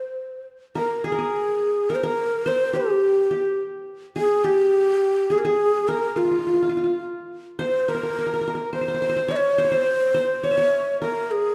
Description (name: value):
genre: Arabic maqam ensemble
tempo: 105 BPM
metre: 3/4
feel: straight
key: C maqam hijaz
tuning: A4 = 439 Hz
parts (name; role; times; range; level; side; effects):
- breathy mellow ney; melody; 0.0-11.5 s; F4 to Eb5+25c; -23 LUFS; equal; none
- qanun; second line; 0.0-11.5 s; F4 to E5; -30 LUFS; equal; none
room: wet recital hall reverb, RT60 1.5 s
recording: dark, warm production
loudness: -22 LUFS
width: mono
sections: 0.7-11.5 A section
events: none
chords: none